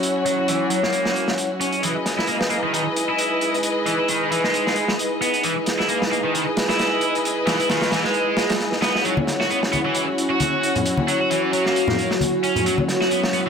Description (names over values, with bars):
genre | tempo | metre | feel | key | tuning
breakbeat, breaks | 133 BPM | 4/4 | swing 56% on 16ths | unclear | A4 = 440 Hz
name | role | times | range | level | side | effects
deep dark ambient pad | sustained chords | 0.0-13.5 s | F#4 to D#5 | -27 LUFS | equal | chorus, built-in reverb
dark studio string section | stabs | 0.0-13.5 s | C#4 to D#5 | -23 LUFS | left 1 dB | ping-pong delay
crunchy breakbeat drum kit | drums | 0.0-13.5 s | hi-hat, snare drum | -25 LUFS | right 1 dB | high-pass filter on hats, high-pass filter on snare, high-pass filter on room
heavy high-gain guitar | riff | 0.3-13.5 s | D#3 to F#4 | -24 LUFS | right 1 dB | distortion, overdrive, vintage 12-bit sampler grit, low-pass filter, ping-pong delay
congas | percussion | 9.2-12.9 s | none | -25 LUFS | left 2 dB | none
room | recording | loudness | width
moderate plate reverb, RT60 2.0 s, small room ambience | none | -18 LUFS | side -6 dB against mid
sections
0.0-13.5 A section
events
filter sweep on ambient pad 0.0-13.5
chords
0.0 F#7(no3); 1.8 Emaj7; 9.1 F#7(no3)